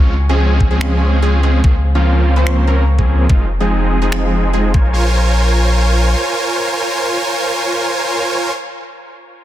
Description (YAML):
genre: future bass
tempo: 145 BPM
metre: 4/4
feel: half-time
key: Bb minor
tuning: A4 = 440 Hz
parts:
  - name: concert harp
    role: arpeggios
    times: 0.0-7.0 s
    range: Ab4 to Db6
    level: -31 LUFS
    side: equal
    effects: none
  - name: wide unison pluck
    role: arpeggios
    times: 0.0-8.5 s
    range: F4 to Ab5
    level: -29 LUFS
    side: left 1 dB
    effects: sidechain pumping, dub echo
  - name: supersaw chords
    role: riff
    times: 0.0-8.5 s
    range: F3 to Ab5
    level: -16 LUFS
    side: right 1 dB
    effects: sidechain pumping, low-pass filter, dub echo
  - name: saturated sub bass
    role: bass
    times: 0.0-6.2 s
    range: F1 to Db2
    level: -14 LUFS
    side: equal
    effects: sidechain pumping
  - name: electronic kick drum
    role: drums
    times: 0.6-4.8 s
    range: none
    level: -12 LUFS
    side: equal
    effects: none
  - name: electronic finger snaps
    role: drums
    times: 0.8-4.2 s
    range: none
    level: -28 LUFS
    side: equal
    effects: soft clipping on snare
room: light reverb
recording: dense, heavily limited modern master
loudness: -12 LUFS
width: side -13 dB against mid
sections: 0.0-4.9 A section; 4.9-8.3 B section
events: filter sweep on supersaw synth 0.0-4.9; filter sweep on harp 0.0-4.9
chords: 0.0 Dbmaj7; 1.6 Bbm9/Db; 3.3 Fm7; 4.7 Bbm9